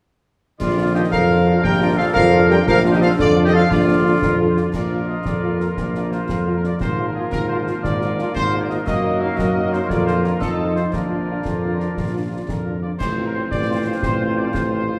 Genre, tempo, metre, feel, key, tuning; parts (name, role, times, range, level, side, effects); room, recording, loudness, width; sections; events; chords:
military-style march for wind band; 116 BPM (dotted quarters); 6/8; straight; Bb major; A4 = 441 Hz
mellow trumpet section; melody; 0.6-15.0 s; Ab4 to G5; -27 LUFS; equal
dark euphonium; second line; 0.6-4.7 s; D3 to G3; -24 LUFS; equal
mellow woodwind section; second line; 0.6-15.0 s; F4 to Eb5; -28 LUFS; equal
clear trombone section; sustained chords; 0.6-15.0 s; F3 to Eb4; -30 LUFS; equal
warm tuba; bass; 0.6-14.9 s; Ab1 to Gb2; -22 LUFS; equal
concert snare drum, clash cymbals and concert bass drum; drums; 0.6-14.7 s; -30 LUFS; equal
warm French horn section; accompaniment; 0.8-15.0 s; F3 to F4; -30 LUFS; equal
wet large studio reverb, RT60 1.5 s; heard from further back in the room; -19 LUFS; mono
0.6-4.7 A section; 4.7-13.0 B section; 13.0-15.0 C section
0.6 Bb; 6.8 Bb7/Ab; 8.9 Ebm/Gb; 9.9 Bb/F; 10.4 F7; 10.9 Bb; 13.0 F/A